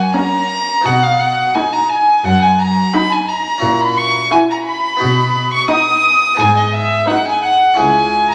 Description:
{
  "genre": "classical, baroque-style concerto movement with solo episodes",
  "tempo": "87 BPM",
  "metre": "4/4",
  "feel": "straight",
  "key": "unclear",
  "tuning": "A4 = 445 Hz",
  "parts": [
    { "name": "rich violin", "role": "melody", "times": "0.0-8.3 s", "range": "D#5 to D#6", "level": "-18 LUFS", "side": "equal", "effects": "none" },
    { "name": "warm chamber violin section", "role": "second line", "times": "0.0-8.3 s", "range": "D#5 to D#6", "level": "-19 LUFS", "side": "equal", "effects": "none" },
    { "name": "harpsichord", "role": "accompaniment", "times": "0.0-8.3 s", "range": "C#2 to G#4", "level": "-24 LUFS", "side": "equal", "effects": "none" },
    { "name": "warm chamber violin section", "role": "melody", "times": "0.2-7.6 s", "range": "F#4 to B4", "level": "-32 LUFS", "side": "equal", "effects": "none" },
    { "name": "dark chamber viola section", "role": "accompaniment", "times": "0.2-7.6 s", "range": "C#4 to E4", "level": "-22 LUFS", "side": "equal", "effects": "none" },
    { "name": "rich chamber cello section", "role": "bass", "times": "0.9-8.3 s", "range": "C#2 to B2", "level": "-23 LUFS", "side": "equal", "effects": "none" }
  ],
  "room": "wet recital hall reverb, RT60 1.7 s",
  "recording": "none",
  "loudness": "-14 LUFS",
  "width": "mono",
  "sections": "0.0-8.3 A section",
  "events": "none",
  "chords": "0.0 F#; 0.9 B; 3.6 F#7/A#; 5.0 B; 6.4 G#m; 7.8 C#m"
}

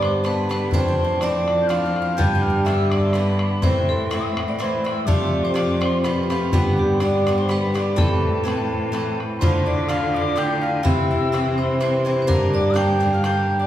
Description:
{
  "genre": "celtic folk, Celtic waltz",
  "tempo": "125 BPM",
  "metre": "3/4",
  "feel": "swing 53% on 8ths",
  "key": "A minor, D minor from 9.4 s",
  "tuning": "A4 = 441 Hz",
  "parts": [
    { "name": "vibraphone with hard mallets", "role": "melody", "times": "0.0-13.7 s", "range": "G4 to A5", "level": "-24 LUFS", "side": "left 1 dB", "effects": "none" },
    { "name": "Irish bouzouki", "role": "second line", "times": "0.0-13.7 s", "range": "G3 to G4", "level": "-31 LUFS", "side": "right 4 dB", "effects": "none" },
    { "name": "mellow wooden whistle", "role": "second line", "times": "0.0-13.7 s", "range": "G5 to G6", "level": "-30 LUFS", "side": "left 4 dB", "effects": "none" },
    { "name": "Irish bouzouki", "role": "accompaniment", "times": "0.0-13.7 s", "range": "G2 to B4", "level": "-24 LUFS", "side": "equal", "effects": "none" },
    { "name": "rich cello", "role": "bass", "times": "0.0-13.7 s", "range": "F2 to D3", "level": "-23 LUFS", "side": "equal", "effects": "none" },
    { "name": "bodhran", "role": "percussion", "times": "0.0-13.4 s", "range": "none", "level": "-25 LUFS", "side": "equal", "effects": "none" }
  ],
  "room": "wet recital hall reverb, RT60 1.8 s",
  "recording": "recorded in a church or concert hall",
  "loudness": "-18 LUFS",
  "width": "side -12 dB against mid",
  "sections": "0.0-9.4 A section; 9.4-13.7 B section",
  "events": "none",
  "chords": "0.0 G; 0.7 Dm7/F; 2.2 G; 3.6 Am; 5.1 F; 6.5 G; 8.0 Amadd9; 9.4 Dm; 10.8 C; 12.3 Gm"
}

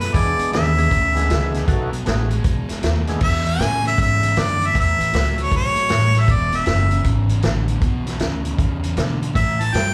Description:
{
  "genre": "electric blues shuffle",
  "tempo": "156 BPM",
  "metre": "4/4",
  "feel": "swing 64% on 8ths",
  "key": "E mixolydian",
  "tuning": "A4 = 440 Hz",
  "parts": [
    { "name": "clear harmonica", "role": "melody", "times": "0.0-9.9 s", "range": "B4 to A5", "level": "-22 LUFS", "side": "equal", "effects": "slapback echo" },
    { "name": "crunchy overdriven guitar", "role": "riff", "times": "0.0-9.9 s", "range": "E2 to A3", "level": "-28 LUFS", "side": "equal", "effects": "slapback echo" },
    { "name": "upright bass", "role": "bass", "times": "0.0-9.9 s", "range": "E1 to B2", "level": "-23 LUFS", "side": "equal", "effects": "none" },
    { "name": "vintage drum kit", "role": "drums", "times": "0.0-9.9 s", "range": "crash cymbal, hi-hat, kick drum, snare drum", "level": "-25 LUFS", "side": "equal", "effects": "none" },
    { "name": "percussive tonewheel organ", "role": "accompaniment", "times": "0.1-3.2 s", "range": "G#3 to A4", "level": "-29 LUFS", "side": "equal", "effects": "slow rotary speaker, slapback echo" }
  ],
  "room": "light reverb",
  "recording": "live gig heard through the venue's PA, club reverb",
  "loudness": "-19 LUFS",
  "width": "mono",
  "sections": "0.0-3.2 A section; 3.2-9.9 A section",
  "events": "none",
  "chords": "0.1 E7; 1.7 B7; 3.2 E7; 4.7 A7; 6.3 E7; 9.3 A7(no3)"
}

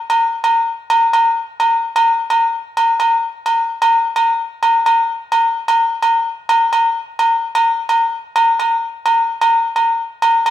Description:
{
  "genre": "highlife",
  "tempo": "129 BPM",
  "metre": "4/4",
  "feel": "swing 54% on 16ths",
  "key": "none",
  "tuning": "none",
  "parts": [
    { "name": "agogo bells", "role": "percussion", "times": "0.1-10.5 s", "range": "none", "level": "-13 LUFS", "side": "equal", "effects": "none" }
  ],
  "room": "wet stone room reverb, RT60 1.3 s",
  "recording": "band playing live in one room",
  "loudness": "-13 LUFS",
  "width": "side -12 dB against mid",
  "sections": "0.0-10.5 A section",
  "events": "none",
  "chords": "none"
}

